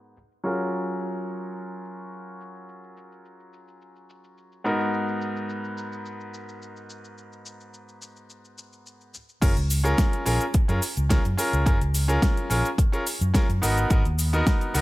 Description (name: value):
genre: nu-disco, nu disco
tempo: 107 BPM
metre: 4/4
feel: straight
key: F# major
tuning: A4 = 440 Hz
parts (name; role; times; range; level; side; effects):
- bright grand piano; accompaniment; 0.0-14.8 s; G#2 to A#4; -28 LUFS; equal; sidechain pumping, analog delay
- pop drum kit; drums; 0.0-14.8 s; crash cymbal, hi-hat, shaker, snare drum; -30 LUFS; equal; overdrive, low-pass filter on perc, low-pass filter on hats, low-pass filter on cymbals, low-pass filter on snare, low-pass filter on room
- fingered electric bass; bass; 9.4-14.8 s; F#1 to F#2; -24 LUFS; equal; tube saturation
- electronic kick drum; drums; 9.4-14.6 s; none; -22 LUFS; equal; overdrive
room: light reverb, digital ambience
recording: low-pass filter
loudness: -22 LUFS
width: side -19 dB against mid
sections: 0.0-9.4 A section; 9.4-14.8 B section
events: filter sweep 0.0-9.4; drop 9.4-14.8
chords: 0.5 F#maj9; 4.7 G#m9; 9.4 F#maj9; 13.6 G#m9